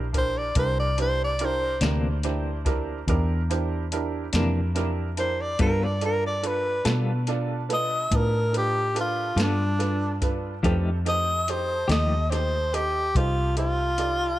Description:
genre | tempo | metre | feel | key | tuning
slow blues | 48 BPM (dotted quarters) | 12/8 | straight | unclear | A4 = 440 Hz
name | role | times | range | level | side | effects
clear upright piano | accompaniment | 0.0-14.3 s | B3 to A5 | -31 LUFS | right 6 dB | dub echo
vintage muted fingered electric bass | bass | 0.0-14.4 s | Bb1 to B2 | -26 LUFS | equal | none
soft vintage rhythm box | drums | 0.1-14.2 s | hi-hat, kick drum, snare drum | -28 LUFS | equal | dub echo
breathy tenor saxophone | melody | 0.2-14.4 s | D4 to Eb5 | -26 LUFS | equal | dub echo
clean electric guitar | accompaniment | 1.8-12.2 s | C3 to A4 | -33 LUFS | left 3 dB | tremolo, dub echo
room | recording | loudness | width
light reverb, digital ambience | echo-heavy mix | -22 LUFS | side -15 dB against mid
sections
0.0-14.4 A section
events
none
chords
0.0 C9; 5.6 G9; 10.6 F9

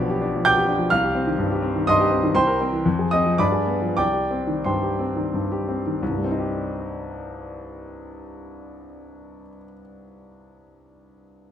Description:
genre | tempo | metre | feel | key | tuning
classical, romantic character piece for solo piano | 84-133 BPM | 3/4 | rubato | C minor | A4 = 440 Hz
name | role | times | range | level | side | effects
warm grand piano | solo | 0.0-11.5 s | B1 to G6 | -20 LUFS | equal | none
room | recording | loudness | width
moderate recital hall reverb, RT60 1.6 s | close, detailed microphones | -19 LUFS | side -9 dB against mid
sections
0.0-6.0 A section; 6.0-9.7 B section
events
slowing down 1.6-6.0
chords
0.0 G7/B; 0.9 Cm; 2.4 C7; 2.9 Fm; 3.4 G7b9; 4.0 Cm

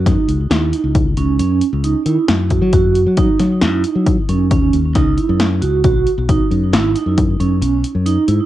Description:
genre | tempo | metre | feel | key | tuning
progressive instrumental, band music in an uneven meter | 135 BPM | 7/4 | straight | unclear | A4 = 440 Hz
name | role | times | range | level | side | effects
modern bright fingered electric bass | bass | 0.0-8.4 s | G#1 to F#3 | -17 LUFS | left 2 dB | none
vibraphone with soft mallets | arpeggios | 0.1-8.5 s | C#4 to F#4 | -17 LUFS | right 6 dB | cassette tape, tape echo
punchy analog drum machine | drums | 0.1-8.4 s | hi-hat, kick drum, snare drum | -17 LUFS | left 2 dB | cassette tape
room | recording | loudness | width
digital ambience | home recording on cassette | -13 LUFS | side -13 dB against mid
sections
0.0-8.5 A section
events
none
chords
0.0 F#5; 5.8 C#7(no3)

